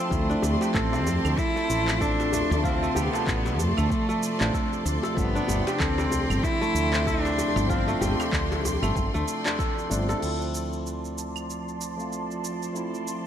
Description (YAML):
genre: organic downtempo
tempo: 95 BPM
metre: 4/4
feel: swing 58% on 16ths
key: D minor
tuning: A4 = 441 Hz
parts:
  - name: bright tine electric piano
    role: accompaniment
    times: 0.0-13.3 s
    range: C3 to E5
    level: -32 LUFS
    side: left 1 dB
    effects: sidechain pumping, low-pass filter, ping-pong delay, slapback echo
  - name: clear symphonic string section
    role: sustained chords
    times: 0.0-13.3 s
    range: F3 to C6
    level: -33 LUFS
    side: equal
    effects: sidechain pumping, low-pass filter
  - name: kora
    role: arpeggios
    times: 0.0-11.4 s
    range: A3 to D5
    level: -31 LUFS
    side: right 1 dB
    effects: ping-pong delay, slapback echo
  - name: rich cello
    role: melody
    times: 0.1-8.3 s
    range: A3 to E4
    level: -28 LUFS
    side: equal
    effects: digital delay, slapback echo
  - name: woody fretless electric bass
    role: bass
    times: 0.1-13.3 s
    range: G1 to F2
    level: -28 LUFS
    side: equal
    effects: sidechain pumping
  - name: electronic kick drum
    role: drums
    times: 0.1-9.7 s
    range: none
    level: -30 LUFS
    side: equal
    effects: none
  - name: organic electronic drum kit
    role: drums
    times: 0.1-13.2 s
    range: claves, crash cymbal, handclaps, shaker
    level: -34 LUFS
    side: right 1 dB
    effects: none
  - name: djembe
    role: percussion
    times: 0.4-10.2 s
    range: none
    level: -35 LUFS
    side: left 3 dB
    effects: none
room: moderate concert hall reverb, RT60 1.9 s, small room ambience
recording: big arena sound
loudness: -23 LUFS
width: side -9 dB against mid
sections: 0.0-10.2 A section; 10.2-13.3 B section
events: none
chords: 0.1 Dm7; 5.2 G7sus4; 10.2 Dm7